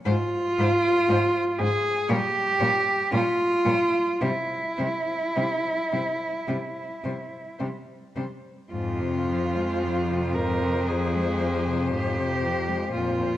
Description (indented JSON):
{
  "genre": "classical, lyrical piece for cello ensemble",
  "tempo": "52-60 BPM",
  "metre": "4/4",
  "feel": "rubato",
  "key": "F minor",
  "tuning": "A4 = 440 Hz",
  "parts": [
    { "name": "rich cello", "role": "melody", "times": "0.1-13.4 s", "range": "C5 to Db5", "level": "-35 LUFS", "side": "left 6 dB", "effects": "none" },
    { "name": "clear cello", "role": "second line", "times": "0.1-13.4 s", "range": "E4 to Bb4", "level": "-24 LUFS", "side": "right 1 dB", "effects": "none" },
    { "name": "clear cello", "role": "accompaniment", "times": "0.1-13.4 s", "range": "F2 to Ab3", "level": "-33 LUFS", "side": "left 3 dB", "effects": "none" },
    { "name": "clear cello", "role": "bass", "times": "0.1-13.4 s", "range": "F2 to C3", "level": "-28 LUFS", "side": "equal", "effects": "none" }
  ],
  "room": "wet recital hall reverb, RT60 1.6 s",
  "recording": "worn, warbling old tape, cassette tape, warbly pitch drift, lossy compression artefacts",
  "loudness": "-22 LUFS",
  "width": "side -13 dB against mid",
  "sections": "0.0-13.4 A section",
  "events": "none",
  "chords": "0.1 Fm/Ab; 2.1 Gm/Bb; 4.2 C; 8.7 Fm"
}